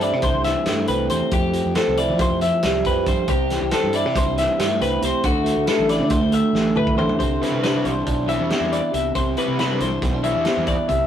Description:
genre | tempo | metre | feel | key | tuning
math rock and midwest emo | 276 BPM (eighths) | 9/8 | straight | C major | A4 = 440 Hz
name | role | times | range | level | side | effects
electric guitar through a small old amp | accompaniment | 0.0-11.1 s | F2 to E4 | -22 LUFS | right 2 dB | none
twelve-string electric guitar | arpeggios | 0.0-11.1 s | F#4 to E5 | -23 LUFS | left 4 dB | none
fuzz fingered electric bass | bass | 0.0-11.1 s | A1 to F3 | -26 LUFS | equal | overdrive
loose indie drum kit | drums | 0.0-11.0 s | hi-hat, kick drum, snare drum, toms | -25 LUFS | equal | none
overdriven semi-hollow guitar | riff | 7.4-10.7 s | C3 to E4 | -26 LUFS | left 2 dB | none
room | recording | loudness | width
moderate studio reverb, RT60 0.6 s | rough rehearsal-room recording, warm saturation | -18 LUFS | side -9 dB against mid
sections
0.0-7.2 A section; 7.2-11.1 B section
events
drum fill 6.5-7.2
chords
0.0 C6; 1.3 Fmaj9; 3.3 C6; 5.2 D9; 7.2 Cmaj9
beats
0.02 0.24 0.45 0.67 0.89 1.11 | 1.32 1.54 1.76 1.98 2.19 2.41 2.63 2.85 3.06 | 3.28 3.50 3.72 3.94 4.15 4.37 4.59 4.80 5.02 | 5.24 5.46 5.67 5.89 6.11 6.32 6.54 6.76 6.97 | 7.19 7.41 7.63 7.84 8.06 8.28 8.50 8.71 8.93 | 9.15 9.37 9.59 9.80 10.02 10.24 10.46 10.67 10.89

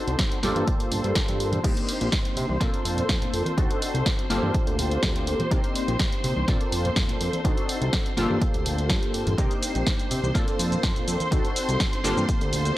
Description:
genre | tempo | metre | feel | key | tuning
filtered disco house | 124 BPM | 4/4 | straight | C dorian | A4 = 439 Hz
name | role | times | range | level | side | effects
funky polysynth comp | accompaniment | 0.0-12.8 s | Bb3 to A4 | -29 LUFS | left 1 dB | chorus, phaser, sidechain pumping, low-pass filter
string machine, full ensemble | sustained chords | 0.0-12.8 s | C5 to C6 | -32 LUFS | equal | ensemble chorus, vintage 12-bit sampler grit, sidechain pumping, low-pass filter
fat analog bass | bass | 0.1-12.7 s | G1 to C3 | -27 LUFS | equal | sidechain pumping, low-pass filter
punchy analog drum machine | drums | 0.1-12.8 s | crash cymbal, hi-hat, shaker, snare drum | -30 LUFS | equal | sidechain pumping on hats, sidechain pumping on cymbals, sidechain pumping on perc
maracas and congas | percussion | 0.1-12.7 s | none | -35 LUFS | right 1 dB | sidechain pumping on perc, low-pass filter on perc
electronic kick drum | drums | 0.2-12.4 s | none | -26 LUFS | equal | none
room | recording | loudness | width
light reverb | dry, gritty hardware recording | -22 LUFS | side -15 dB against mid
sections
0.0-12.8 A section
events
filter sweep 0.0-12.8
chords
0.4 Gm9; 1.6 Cm9; 2.6 Bbmaj9; 3.6 D7b9; 4.3 Gm9; 5.5 Cm9; 6.5 Bbmaj9; 7.4 D7b9; 8.2 Gm9; 9.4 Cm9; 10.4 Bbmaj9; 11.3 D7b9; 12.0 Gm9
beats
0.19 0.68 1.16 | 1.64 2.13 2.61 3.09 | 3.58 4.06 4.55 5.03 | 5.51 6.00 6.48 6.96 | 7.45 7.93 8.42 8.90 | 9.38 9.87 10.35 10.84 | 11.32 11.80 12.29 12.77

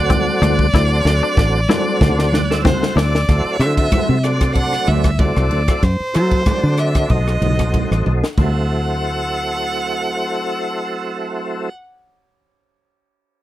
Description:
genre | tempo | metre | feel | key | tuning
electric jazz fusion | 94 BPM | 4/4 | swing 54% on 16ths | D mixolydian | A4 = 439 Hz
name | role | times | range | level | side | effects
clear violin | melody | 0.0-11.7 s | C5 to F#5 | -22 LUFS | right 1 dB | slapback echo
tonewheel organ | accompaniment | 0.0-11.7 s | F#3 to F#5 | -22 LUFS | right 1 dB | chorus vibrato, slow rotary speaker
fingered electric bass | bass | 0.0-11.8 s | A1 to F#3 | -18 LUFS | equal | none
clean electric guitar | stabs | 0.1-3.2 s | C4 to E4 | -24 LUFS | left 8 dB | wide subtle chorus
crisp fusion drum kit | drums | 0.1-8.5 s | crash cymbal, hi-hat, kick drum, ride cymbal, rim click, snare drum, toms | -18 LUFS | equal | none
congas | percussion | 0.1-8.7 s | none | -24 LUFS | equal | none
room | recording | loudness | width
little or no reverb | none | -15 LUFS | side -14 dB against mid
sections
0.0-3.3 A section; 3.3-8.4 B section; 8.4-10.9 C section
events
drum fill 0.7-3.3, 8.1-8.4; tonewheel organ fill 2.0-3.3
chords
0.0 D9; 5.8 F#m7b5; 7.1 B7b9; 8.4 D9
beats
0.10 | 0.74 1.37 2.01 2.65 | 3.28 3.92 4.55 5.19 | 5.83 6.46 7.10 7.74 | 8.38 9.02 9.65 10.29

